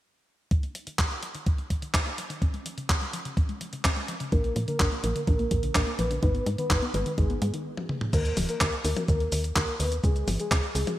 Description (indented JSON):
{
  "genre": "italo disco",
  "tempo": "126 BPM",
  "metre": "4/4",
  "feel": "straight",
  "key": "unclear",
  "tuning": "A4 = 440 Hz",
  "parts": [
    { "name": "warbly dusty pluck", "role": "arpeggios", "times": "0.5-7.6 s", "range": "Db3 to Eb4", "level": "-36 LUFS", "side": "left 2 dB", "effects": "chorus, cassette tape, digital delay" },
    { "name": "clean 12-bit digital drum machine", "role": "drums", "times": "0.5-11.0 s", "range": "cabasa, crash cymbal, handclaps, hi-hat, toms", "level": "-30 LUFS", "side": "equal", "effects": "small room ambience, gated reverb" },
    { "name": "electronic kick drum", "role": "drums", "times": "0.5-10.6 s", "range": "none", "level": "-26 LUFS", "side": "equal", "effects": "small room ambience" },
    { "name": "soft octave-layered synth lead", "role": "melody", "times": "4.3-10.9 s", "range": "Ab4 to Cb5", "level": "-32 LUFS", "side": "left 1 dB", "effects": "chorus, tremolo, vintage 12-bit sampler grit, digital delay" },
    { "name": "tight sequencer bass", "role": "bass", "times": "4.3-10.9 s", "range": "Eb1 to Bb2", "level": "-29 LUFS", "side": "equal", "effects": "none" }
  ],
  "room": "light reverb",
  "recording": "bright 1980s-style digital production",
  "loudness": "-25 LUFS",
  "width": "side -14 dB against mid",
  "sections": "0.5-8.1 A section; 8.1-11.0 B section",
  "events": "filter sweep on synth arpeggio sound 0.5-8.1; stop 7.7-8.1; drum fill 7.8-8.1",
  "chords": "0.5 Ebm; 2.4 Db; 4.3 Bb; 6.2 Abm; 8.1 Eb5; 10.0 Db5",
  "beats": "| 0.51 0.99 1.47 1.94 | 2.42 2.89 3.37 3.85 | 4.32 4.80 5.27 5.75 | 6.23 6.70 7.18 7.66 | 8.13 8.61 9.08 9.56 | 10.04 10.51"
}